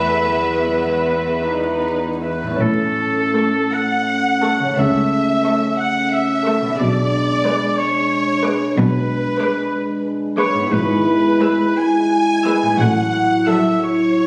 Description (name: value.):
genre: classical, slow romantic movement for symphony orchestra.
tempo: 50-63 BPM (dotted quarters).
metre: 12/8.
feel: rubato.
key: E major from 10.7 s.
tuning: A4 = 440 Hz.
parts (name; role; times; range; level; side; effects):
rich studio violin section; melody; 0.0-13.7 s; E5 to E6; -31 LUFS; equal; none.
warm studio violin section; second line; 0.0-14.3 s; A3 to G#5; -27 LUFS; equal; none.
rich chamber viola section; accompaniment; 0.0-13.7 s; F#3 to B4; -24 LUFS; equal; none.
concert harp; arpeggios; 0.0-14.3 s; G#2 to B5; -30 LUFS; equal; none.
clear chamber cello section; bass; 0.0-13.6 s; E2 to C#3; -25 LUFS; equal; none.
clear oboe; second line; 2.2-14.3 s; A4 to G#5; -23 LUFS; equal; none.
dark French horn section; sustained chords; 2.6-14.3 s; F#3 to E4; -22 LUFS; equal; none.
rich chamber double bass section; bass; 2.6-13.6 s; G#1 to C#2; -25 LUFS; equal; none.
room: wet scoring stage reverb, RT60 1.6 s.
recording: recorded on a phone in the room, club reverb, vinyl crackle, compression.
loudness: -18 LUFS.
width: mono.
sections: 0.0-2.6 A section; 2.6-14.3 B section.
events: none.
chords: 0.0 E; 2.6 A; 4.8 A/C#; 6.8 G#dim/B; 10.7 E/G#; 12.8 F#m7/A.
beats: 0.28 1.45 | 2.61 3.73 4.78 5.79 | 6.79 7.79 8.77 9.73 | 10.72 11.79 12.80 13.82.